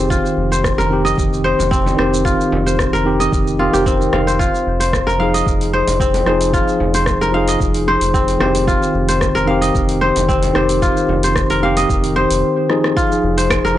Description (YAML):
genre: organic downtempo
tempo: 112 BPM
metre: 4/4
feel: swing 54% on 16ths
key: F minor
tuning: A4 = 440 Hz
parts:
  - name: tine electric piano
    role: accompaniment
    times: 0.0-13.8 s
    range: Eb3 to Bb4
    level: -19 LUFS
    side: equal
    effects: fast stereo tremolo, sidechain pumping, analog delay
  - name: kora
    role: arpeggios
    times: 0.0-13.8 s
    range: C4 to F5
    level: -17 LUFS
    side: left 2 dB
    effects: analog delay
  - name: round analog bass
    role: bass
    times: 0.0-13.8 s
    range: F1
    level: -21 LUFS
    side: equal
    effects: tube saturation
  - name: deep house drum kit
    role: drums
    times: 0.1-13.8 s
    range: claves, hi-hat, rim click, shaker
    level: -23 LUFS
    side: equal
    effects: none
  - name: electronic kick drum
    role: drums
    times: 0.1-13.6 s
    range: none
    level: -20 LUFS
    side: equal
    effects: none
  - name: frame drum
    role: percussion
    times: 1.6-11.2 s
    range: none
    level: -28 LUFS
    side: equal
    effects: none
room: light reverb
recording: dry, gritty hardware recording, nothing above 10.9 kHz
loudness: -13 LUFS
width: side -13 dB against mid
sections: 0.0-13.0 A section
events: drum fill 12.7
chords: 0.1 Cm/F; 4.4 Fm7